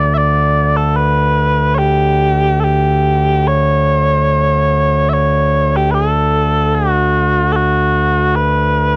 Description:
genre	celtic folk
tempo	74 BPM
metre	3/4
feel	rubato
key	D major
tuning	A4 = 439 Hz
part	mellow small bagpipes	solo	0.0-9.0 s	D2 to E5	-14 LUFS	equal	none
room	small room ambience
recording	dry, close 1970s-style studio recording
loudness	-14 LUFS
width	mono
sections	0.0-9.0 A section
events	none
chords	none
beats	0.19 | 0.99 1.80 2.63 | 3.48 4.31 5.13 | 5.94 6.74 7.53 | 8.33

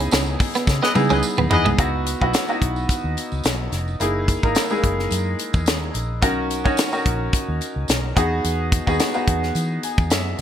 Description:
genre	polished 1980s jazz-funk pop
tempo	108 BPM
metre	4/4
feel	swing 54% on 16ths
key	C# dorian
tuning	A4 = 438 Hz
part	clear baby grand piano	accompaniment	0.0-10.4 s	G#3 to G#5	-23 LUFS	equal	wide subtle chorus
part	clean electric guitar	riff	0.0-1.8 s	G#3 to C#4	-26 LUFS	right 5 dB	ensemble chorus
part	vintage muted fingered electric bass	bass	0.0-10.4 s	E#1 to E3	-24 LUFS	equal	none
part	tight funk drum kit	drums	0.0-10.4 s	hi-hat, kick drum, snare drum, toms	-21 LUFS	equal	gated reverb
part	tambourine	percussion	0.0-10.4 s	none	-36 LUFS	right 8 dB	none
part	clear horn section	second line	0.8-1.7 s	G#4 to D#5	-24 LUFS	left 2 dB	none
room	light reverb, small room ambience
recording	bright 1980s-style digital production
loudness	-18 LUFS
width	side -10 dB against mid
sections	0.0-1.8 A section; 1.8-10.4 B section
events	band accent 0.0-1.8; drum fill 0.7-1.8; grand piano fill 9.6-10.4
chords	0.0 C#m9; 1.8 C#m11; 4.0 F#13; 6.2 Bmaj7; 8.2 Emaj9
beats	0.12 0.68 1.23 | 1.79 2.34 2.90 3.45 | 4.00 4.56 5.11 5.67 | 6.22 6.78 7.33 7.89 | 8.44 9.00 9.55 10.11

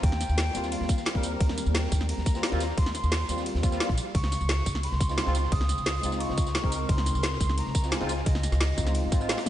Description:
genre	liquid drum and bass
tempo	175 BPM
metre	4/4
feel	straight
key	unclear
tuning	A4 = 439 Hz
part	mellow hollow jazz flute	melody	0.0-9.3 s	Eb5 to Eb6	-35 LUFS	equal	tape echo
part	upright bass	bass	0.0-9.3 s	Ab1 to Eb2	-28 LUFS	equal	none
part	crunchy breakbeat drum kit	drums	0.0-9.5 s	hi-hat, snare drum	-43 LUFS	equal	none
part	electronic kick drum	drums	0.0-9.2 s	none	-26 LUFS	equal	none
part	garage drum kit	drums	0.0-9.5 s	hi-hat, ride cymbal, snare drum, tambourine, toms	-31 LUFS	equal	none
part	barky tine electric piano	accompaniment	0.5-9.4 s	G3 to Bb4	-33 LUFS	equal	ensemble chorus, tape echo
room	moderate lush hall reverb, RT60 1.9 s, small room ambience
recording	dreamy mix soaked in reverb, nothing above 10.3 kHz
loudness	-24 LUFS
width	side -12 dB against mid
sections	0.0-9.5 A section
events	none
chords	0.0 Eb69; 4.1 Dbmaj9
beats	| 0.03 0.38 0.72 1.06 | 1.41 1.75 2.09 2.43 | 2.78 3.12 3.46 3.81 | 4.15 4.49 4.83 5.18 | 5.52 5.86 6.21 6.55 | 6.89 7.23 7.58 7.92 | 8.26 8.61 8.95 9.29

